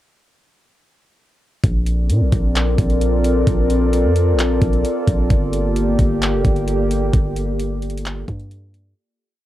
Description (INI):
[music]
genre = hip hop, atmospheric cloud-rap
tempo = 131 BPM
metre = 4/4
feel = half-time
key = Bb major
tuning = A4 = 439 Hz
[part]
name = warbly tape-like pad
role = sustained chords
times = 2.0-8.9 s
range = Bb3 to D5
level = -20 LUFS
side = equal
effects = chorus, built-in reverb, sidechain pumping, cassette tape
[part]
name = long sustained 808-style bass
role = bass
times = 1.6-8.9 s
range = F1 to Bb2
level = -19 LUFS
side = equal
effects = none
[part]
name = trap drum kit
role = drums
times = 1.6-8.8 s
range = handclaps, hi-hat, kick drum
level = -19 LUFS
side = equal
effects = cassette tape
[sound]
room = little or no reverb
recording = home recording on cassette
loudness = -15 LUFS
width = side -14 dB against mid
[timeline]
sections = 1.6-9.0 verse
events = fade-out 7.1-9.0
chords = 1.6 Bbmaj9; 5.3 Gm9